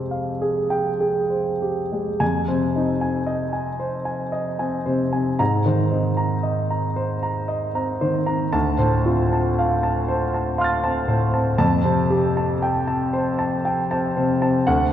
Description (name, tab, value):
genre	classical, impressionist solo piano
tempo	58 BPM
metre	3/4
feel	uneven beats, rubato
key	F dorian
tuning	A4 = 440 Hz
part	warm grand piano	solo	0.0-14.9 s	D2 to A6	-19 LUFS	equal	none
room	wet concert hall reverb, RT60 2.0 s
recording	dark, warm production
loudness	-19 LUFS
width	side -10 dB against mid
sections	0.0-2.2 A section; 2.2-14.9 B section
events	none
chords	0.0 Fmadd9; 2.2 Fm7; 5.4 Abadd9; 8.5 Dm7; 11.6 Fadd9